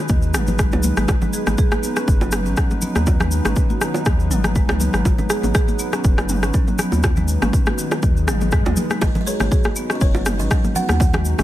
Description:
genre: afro house.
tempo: 121 BPM.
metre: 4/4.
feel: swing 54% on 16ths.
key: G# minor.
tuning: A4 = 439 Hz.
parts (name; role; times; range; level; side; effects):
dark analog pad; sustained chords; 0.0-11.4 s; F#3 to B4; -28 LUFS; right 1 dB; wide subtle chorus, sidechain pumping.
marimba with medium mallets; arpeggios; 0.1-11.4 s; D#3 to G#4; -26 LUFS; left 1 dB; sidechain pumping, tape echo.
warm sub bass; bass; 0.1-11.4 s; F#1 to G#2; -22 LUFS; equal; tube saturation, sidechain pumping.
electronic kick drum; drums; 0.1-11.1 s; none; -18 LUFS; equal; none.
cabasa; percussion; 0.1-11.4 s; none; -31 LUFS; left 1 dB; none.
congas; percussion; 0.1-11.4 s; none; -27 LUFS; left 2 dB; none.
house drum kit; drums; 0.3-11.4 s; rim click, toms; -24 LUFS; equal; none.
bongos; percussion; 0.7-11.4 s; none; -28 LUFS; right 4 dB; none.
swell; sound effects; 8.2-9.0 s; none; -31 LUFS; left 5 dB; none.
buzzing kalimba; melody; 9.0-11.4 s; C#5 to F#5; -28 LUFS; right 2 dB; none.
room: studio ambience.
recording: none.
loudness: -16 LUFS.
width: side -14 dB against mid.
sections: 0.0-11.4 A section.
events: swell 8.2-9.0.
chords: 0.0 G#m7.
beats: 0.09 0.59 | 1.09 1.58 2.08 2.57 | 3.07 3.56 4.06 4.56 | 5.05 5.55 6.04 6.54 | 7.04 7.53 8.03 8.52 | 9.02 9.52 10.01 10.51 | 11.00.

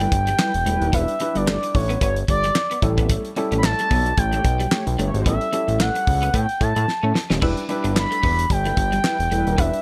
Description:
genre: early-eighties boogie funk.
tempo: 111 BPM.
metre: 4/4.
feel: swing 56% on 16ths.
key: E dorian.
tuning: A4 = 439 Hz.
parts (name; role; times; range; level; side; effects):
expressive portamento lead; melody; 0.0-9.8 s; C#5 to B5; -25 LUFS; equal; chorus, slapback echo.
mellow synth brass; second line; 0.0-1.0, 4.3-5.3, 8.6-9.7 s; G3 to C#5; -30 LUFS; equal; chorus.
electric guitar at the edge of break-up; riff; 0.0-9.7 s; G3 to E4; -34 LUFS; equal; ensemble chorus.
fat analog bass; bass; 0.0-9.7 s; D#1 to A2; -25 LUFS; equal; none.
damped 70s drum kit; drums; 0.0-9.8 s; crash cymbal, handclaps, hi-hat, kick drum, snare drum; -25 LUFS; equal; none.
dark grand piano; accompaniment; 0.9-9.8 s; G3 to B4; -29 LUFS; equal; none.
room: little or no reverb.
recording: none.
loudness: -21 LUFS.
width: mono.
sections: 0.0-9.8 A section.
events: drum fill 6.9-7.4.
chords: 0.0 Em7; 2.8 A7; 7.4 Em7.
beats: 0.39 | 0.94 1.48 2.02 2.56 | 3.10 3.64 4.18 4.72 | 5.26 5.80 6.34 6.88 | 7.42 7.96 8.50 9.04 | 9.58.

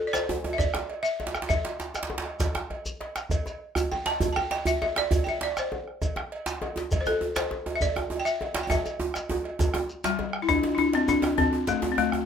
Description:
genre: west african traditional, West African drum ensemble.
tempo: 134 BPM (dotted quarters).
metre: 12/8.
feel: straight.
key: C major pentatonic.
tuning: A4 = 441 Hz.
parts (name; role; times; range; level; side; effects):
balafon; melody; 0.0-12.3 s; G3 to A5; -26 LUFS; left 2 dB; none.
bombo; percussion; 0.1-12.3 s; none; -30 LUFS; right 2 dB; none.
cowbell; percussion; 0.1-12.1 s; none; -38 LUFS; right 3 dB; none.
djembe; percussion; 0.1-12.0 s; none; -36 LUFS; left 2 dB; none.
djembe; percussion; 0.1-12.3 s; none; -31 LUFS; right 3 dB; none.
shekere; percussion; 0.2-11.8 s; none; -35 LUFS; left 1 dB; none.
room: light reverb.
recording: close, detailed microphones.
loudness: -25 LUFS.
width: side -8 dB against mid.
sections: 0.0-10.5 A section; 10.5-12.3 B section.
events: drum fill 2.6-3.3, 8.7-10.5.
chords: none.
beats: 0.14 0.59 1.04 | 1.50 1.95 2.40 2.86 | 3.31 3.76 4.21 4.66 | 5.11 5.56 6.01 6.46 | 6.91 7.36 7.81 8.26 | 8.70 9.15 9.60 10.04 | 10.49 10.94 11.38 11.82.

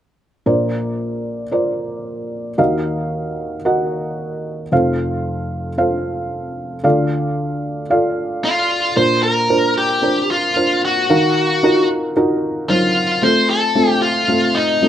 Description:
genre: piano-driven pop.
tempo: 113 BPM.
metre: 4/4.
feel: straight.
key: Bb major.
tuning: A4 = 439 Hz.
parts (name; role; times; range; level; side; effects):
felt-muted upright piano; accompaniment; 0.5-14.9 s; F1 to Gb5; -17 LUFS; equal; slapback echo.
high-gain lead guitar; melody; 8.4-14.9 s; Eb4 to C5; -16 LUFS; left 1 dB; distortion.
room: little or no reverb.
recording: recorded outdoors, with no room sound.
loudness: -15 LUFS.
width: side -10 dB against mid.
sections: 0.5-9.0 A section; 9.0-14.9 B section.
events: none.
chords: 0.5 Bbadd9; 2.6 Ebmadd9; 4.7 F; 6.8 Dm; 9.0 Bbadd9; 11.1 Ebmadd9; 13.2 F.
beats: | 0.46 0.99 1.52 2.05 | 2.59 3.12 3.65 4.18 | 4.71 5.25 5.78 6.31 | 6.84 7.38 7.91 8.44 | 8.97 9.50 10.04 10.57 | 11.10 11.63 12.16 12.69 | 13.23 13.76 14.29 14.82.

